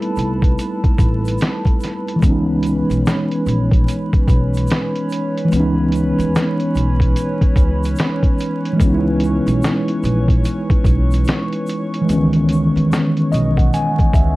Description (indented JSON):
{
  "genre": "lo-fi hip hop",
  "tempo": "73 BPM",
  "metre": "4/4",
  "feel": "swing 62% on 16ths",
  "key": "C# minor",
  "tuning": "A4 = 440 Hz",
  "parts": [
    { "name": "mellow tine electric piano", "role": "accompaniment", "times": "0.0-14.4 s", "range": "D#3 to G#5", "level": "-18 LUFS", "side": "equal", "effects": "medium stereo tremolo, cassette tape, low-pass filter" },
    { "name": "hollow soft pad", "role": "sustained chords", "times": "0.0-14.4 s", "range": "C#4 to C#6", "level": "-27 LUFS", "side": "equal", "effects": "chorus, low-pass filter" },
    { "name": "lo-fi sampler-style drum kit", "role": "drums", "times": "0.0-14.4 s", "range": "hi-hat, kick drum, snare drum", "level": "-16 LUFS", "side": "equal", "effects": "none" },
    { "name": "upright bass", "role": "bass", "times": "0.2-14.4 s", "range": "A1 to D#2", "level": "-20 LUFS", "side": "equal", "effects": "none" },
    { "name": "tube shaker", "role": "percussion", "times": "0.2-14.4 s", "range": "none", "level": "-47 LUFS", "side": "left 4 dB", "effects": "none" }
  ],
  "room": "moderate studio reverb, RT60 0.6 s",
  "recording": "dark, warm production, vinyl crackle",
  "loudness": "-14 LUFS",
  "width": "side -19 dB against mid",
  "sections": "0.0-14.4 A section",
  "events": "tine electric piano fill 12.9-14.4",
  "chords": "0.0 Am9; 2.2 C#m9"
}